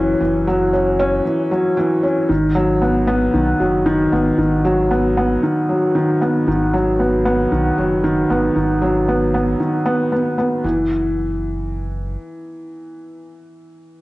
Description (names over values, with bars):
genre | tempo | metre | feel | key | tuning
piano and strings electronica | 115 BPM | 4/4 | straight | unclear | A4 = 437 Hz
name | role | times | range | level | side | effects
felt-muted upright piano | riff | 0.0-14.0 s | D#3 to C#4 | -16 LUFS | equal | cassette tape, analog delay
round analog bass | bass | 0.0-12.2 s | F#1 to B1 | -24 LUFS | equal | tube saturation
room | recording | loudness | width
moderate spring reverb, RT60 1.2 s, small room ambience | home recording on cassette, nothing above 10.8 kHz | -15 LUFS | side -18 dB against mid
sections
0.0-10.6 A section; 10.6-14.0 B section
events
none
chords
0.0 F#7(no3); 2.3 G#m7; 10.6 Esus2/F#